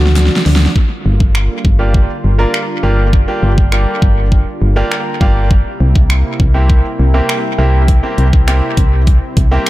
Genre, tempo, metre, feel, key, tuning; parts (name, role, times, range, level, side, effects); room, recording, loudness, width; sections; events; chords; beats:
dance-pop; 101 BPM; 4/4; straight; G dorian; A4 = 438 Hz
bright grand piano; accompaniment; 0.0-9.7 s; Bb3 to Bb5; -19 LUFS; right 1 dB; sidechain pumping, dub echo
lush unison pad; sustained chords; 0.0-9.7 s; C3 to F#4; -23 LUFS; right 1 dB; chorus, sidechain pumping
solid FM bass; bass; 0.0-9.6 s; G1 to D2; -12 LUFS; equal; sidechain pumping
pop drum kit; drums; 0.1-9.7 s; finger snaps, hi-hat, kick drum, snare drum; -13 LUFS; equal; overdrive, dub echo
digital ambience; echo-heavy mix; -10 LUFS; side -17 dB against mid
0.8-9.7 A section
drum fill 0.0-0.8; grand piano fill 4.6-5.5
0.0 D; 0.8 Gm7; 5.5 C7
0.16 | 0.76 1.35 1.94 2.54 | 3.13 3.73 4.32 4.91 | 5.51 6.10 6.70 7.29 | 7.88 8.48 9.07 9.67